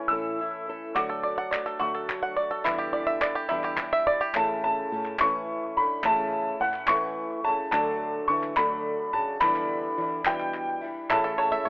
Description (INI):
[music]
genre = indie folk with a building arrangement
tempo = 71 BPM (dotted quarters)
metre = 6/8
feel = straight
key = A mixolydian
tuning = A4 = 444 Hz
[part]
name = warm upright piano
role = melody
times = 0.0-11.7 s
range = F#5 to E6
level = -26 LUFS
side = equal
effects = tape echo
[part]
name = fingerpicked acoustic archtop guitar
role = accompaniment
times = 0.0-1.0 s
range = A2 to A4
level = -33 LUFS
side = equal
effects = none
[part]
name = picked old ladder-braced acoustic guitar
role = accompaniment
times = 0.0-11.7 s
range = E2 to F#4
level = -36 LUFS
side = left 1 dB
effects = none
[part]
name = mellow French horn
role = second line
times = 0.1-11.7 s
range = A2 to A3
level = -35 LUFS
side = right 1 dB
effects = none
[part]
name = fingered electric bass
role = bass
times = 0.1-11.7 s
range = A1 to E3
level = -42 LUFS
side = equal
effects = none
[part]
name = dark grand piano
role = accompaniment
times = 1.0-11.7 s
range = A1 to F#5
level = -36 LUFS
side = left 1 dB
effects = none
[part]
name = bluegrass banjo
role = arpeggios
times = 1.0-4.4, 11.1-11.7 s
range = E4 to F#5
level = -26 LUFS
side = right 1 dB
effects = none
[part]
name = group handclap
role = percussion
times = 1.0-11.2 s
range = none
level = -30 LUFS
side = left 1 dB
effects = none
[sound]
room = light reverb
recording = rough home demo mix, telephone sound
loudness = -24 LUFS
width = side -24 dB against mid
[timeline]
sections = 0.0-4.4 A section; 4.4-11.7 B section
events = build-up 0.0-4.4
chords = 0.0 A; 1.0 D; 2.7 Em7; 4.4 A; 7.7 D; 9.4 Em7; 11.1 A